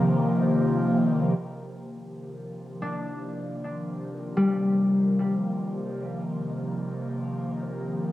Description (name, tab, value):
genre	ambient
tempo	free time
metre	none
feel	none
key	Eb major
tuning	A4 = 440 Hz
part	airy breathy pad	sustained chords	0.0-8.1 s	C3 to G4	-26 LUFS	equal	chorus, phaser, cassette tape
part	concert harp	arpeggios	2.8-8.1 s	G3 to D4	-27 LUFS	left 2 dB	cassette tape, analog delay
room	wet spring reverb, RT60 1.9 s, small room ambience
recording	home recording on cassette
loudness	-24 LUFS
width	side -14 dB against mid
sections	0.0-1.4 A section; 1.4-8.1 B section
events	fade-in on analog synth pad 1.4-8.1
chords	0.0 Eb; 1.4 Ebmaj7